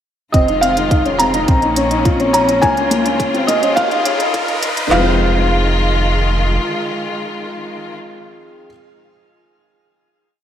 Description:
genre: piano and strings electronica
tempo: 105 BPM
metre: 4/4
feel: straight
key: F minor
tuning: A4 = 440 Hz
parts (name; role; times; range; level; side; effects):
- felt-muted upright piano; melody; 0.3-8.7 s; Eb5 to Bb5; -18 LUFS; right 1 dB; low-pass filter, analog delay, shimmer reverb
- bright symphonic string section; sustained chords; 0.3-8.0 s; Db3 to F4; -21 LUFS; left 2 dB; sidechain pumping, shimmer reverb
- dark upright piano; riff; 0.3-8.7 s; F3 to F4; -19 LUFS; left 2 dB; analog delay, shimmer reverb
- warm sub bass; bass; 0.3-6.6 s; Eb1 to Db2; -20 LUFS; equal; sidechain pumping
- electronic hi-hat; drums; 0.3-4.9 s; none; -25 LUFS; right 1 dB; small room ambience
- organic electronic drum kit; drums; 0.3-5.0 s; handclaps, kick drum, snare drum; -16 LUFS; equal; small room ambience
- riser; sound effects; 2.7-4.9 s; none; -25 LUFS; left 1 dB; none
room: wet lush hall reverb, RT60 2.4 s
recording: dreamy mix soaked in reverb, high-pass filter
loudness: -13 LUFS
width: side -10 dB against mid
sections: 0.3-4.9 build; 4.9-7.2 final chord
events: build-up 0.3-4.9; filter sweep 0.3-4.9; riser 2.7-4.9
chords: 0.3 Fm7; 1.5 Bbmadd9; 2.6 Db6; 3.8 Ebadd9; 4.9 Fm7

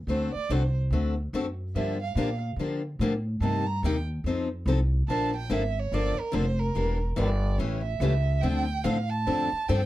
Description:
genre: acoustic string swing (jazz manouche)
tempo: 144 BPM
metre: 4/4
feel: swing 63% on 8ths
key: D minor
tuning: A4 = 440 Hz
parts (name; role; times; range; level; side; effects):
- upright bass; bass; 0.0-9.9 s; E1 to D3; -27 LUFS; equal; none
- warm violin; second line; 0.1-9.9 s; Bb4 to Bb5; -32 LUFS; right 6 dB; none
- picked steel-string acoustic guitar; accompaniment; 0.1-9.8 s; C3 to A4; -29 LUFS; left 3 dB; none
room: light reverb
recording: dark, warm production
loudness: -25 LUFS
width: side -15 dB against mid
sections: 0.0-9.9 A section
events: violin solo 0.0-9.9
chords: 0.1 D7; 1.8 Gm7; 3.4 Cm7; 4.3 F7; 5.1 Bbmaj7; 6.8 Em7b5; 7.6 A7; 8.4 Dm7

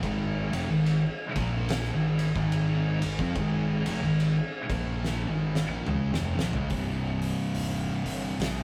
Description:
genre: stoner and doom metal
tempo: 72 BPM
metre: 4/4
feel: swing 60% on 8ths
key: unclear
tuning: A4 = 439 Hz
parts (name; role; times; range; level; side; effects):
- thick fuzz guitar; riff; 0.0-8.6 s; C2 to C4; -32 LUFS; equal; distortion
- thick fuzz guitar; riff; 0.0-8.6 s; C2 to C4; -33 LUFS; equal; distortion
- fuzz fingered electric bass; bass; 0.0-8.6 s; C1 to F2; -39 LUFS; equal; overdrive
- oversized low-tuned drum kit; drums; 0.0-8.6 s; hi-hat, kick drum, ride cymbal, snare drum, toms; -35 LUFS; equal; none
room: light reverb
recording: rough rehearsal-room recording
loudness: -28 LUFS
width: mono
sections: 0.0-6.7 A section; 6.7-8.6 B section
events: drum fill 5.0-6.7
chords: 0.0 Ab5; 6.7 Cm

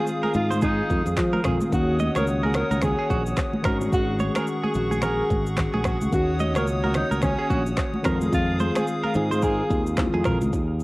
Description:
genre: afrobeats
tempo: 109 BPM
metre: 4/4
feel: swing 58% on 16ths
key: unclear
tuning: A4 = 442 Hz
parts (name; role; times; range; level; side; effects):
- warm alto saxophone; melody; 0.0-9.8 s; Db4 to Bb4; -29 LUFS; equal; cassette tape, analog delay
- mellow tine electric piano; accompaniment; 0.0-10.6 s; Eb3 to Gb4; -28 LUFS; left 1 dB; medium stereo tremolo, cassette tape
- hollow soft pad; sustained chords; 0.0-10.5 s; Ab4 to Eb6; -31 LUFS; left 1 dB; chorus, cassette tape
- direct-recorded clean electric guitar; riff; 0.0-10.4 s; Gb4 to Eb5; -32 LUFS; right 3 dB; cassette tape, analog delay
- afro-pop drum kit; drums; 0.1-10.8 s; finger snaps, handclaps, kick drum, rim click, shaker, toms; -27 LUFS; equal; cassette tape
- congas; percussion; 0.2-10.5 s; none; -31 LUFS; right 1 dB; none
- modern bright fingered electric bass; bass; 0.3-10.8 s; Ab1 to F3; -25 LUFS; equal; none
room: digital ambience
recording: home recording on cassette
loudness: -21 LUFS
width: side -21 dB against mid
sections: 0.0-10.5 A section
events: none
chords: 0.0 Fm7; 1.7 Ebm7; 3.6 Ab7sus4; 6.1 Ebm7; 8.1 Fm7

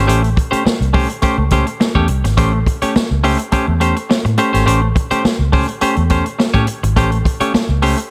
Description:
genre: funk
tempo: 105 BPM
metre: 4/4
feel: straight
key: A mixolydian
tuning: A4 = 440 Hz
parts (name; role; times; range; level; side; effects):
- semi-hollow electric guitar; accompaniment; 0.0-8.0 s; A3 to C#5; -19 LUFS; equal; spring reverb
- vintage muted fingered electric bass; bass; 0.0-7.9 s; G#1 to A2; -19 LUFS; equal; none
- swinging big-band drum kit; drums; 0.1-8.1 s; hi-hat, kick drum, snare drum; -20 LUFS; equal; none
room: little or no reverb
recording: none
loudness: -15 LUFS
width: mono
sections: 0.0-8.1 A section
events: none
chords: 0.0 A7#9

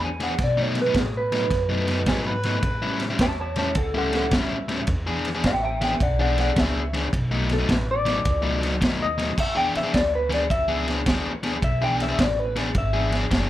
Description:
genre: electric blues shuffle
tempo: 107 BPM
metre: 4/4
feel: swing 66% on 8ths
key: E mixolydian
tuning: A4 = 440 Hz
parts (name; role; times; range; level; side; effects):
- electric guitar through a small old amp; melody; 0.0-13.1 s; G#4 to A5; -26 LUFS; equal; analog chorus
- overdriven electric guitar; riff; 0.0-13.5 s; A2 to G#4; -26 LUFS; left 2 dB; none
- upright bass; bass; 0.0-13.5 s; F#1 to B2; -28 LUFS; equal; none
- crunchy breakbeat drum kit; drums; 0.2-13.5 s; crash cymbal, kick drum, ride cymbal, snare drum; -26 LUFS; equal; none
- mellow harmonica; second line; 2.1-3.1 s; G#4 to B4; -30 LUFS; equal; overdrive
room: light reverb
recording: none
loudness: -21 LUFS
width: side -14 dB against mid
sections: 0.0-9.4 A section; 9.4-13.5 B section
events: clean electric guitar solo 9.4-13.5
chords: 0.4 B7; 2.6 A7; 4.9 E7; 7.1 B7; 9.4 E7

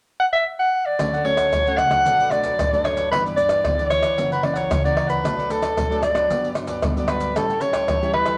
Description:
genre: samba and choro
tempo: 113 BPM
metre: 4/4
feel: straight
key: D major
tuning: A4 = 443 Hz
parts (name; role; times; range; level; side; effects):
- warm soprano saxophone; melody; 0.2-8.4 s; A4 to F#5; -22 LUFS; equal; none
- cavaquinho; accompaniment; 1.0-8.4 s; D4 to G5; -34 LUFS; equal; none
- nylon-string guitar; accompaniment; 1.0-8.4 s; F#2 to E4; -32 LUFS; equal; none
- upright bass; bass; 1.0-8.3 s; F#1 to E2; -35 LUFS; equal; none
- maracas, surdo, pandeiro and tamborim; percussion; 1.0-8.4 s; none; -27 LUFS; equal; none
room: wet club reverb, RT60 0.9 s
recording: none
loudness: -21 LUFS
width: mono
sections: 1.0-8.4 A section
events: none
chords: 0.0 N.C.; 1.0 Dmaj7; 2.1 Bm7; 3.1 G6; 4.2 F#7; 5.2 Bm7; 6.3 Gmaj7; 7.4 A7

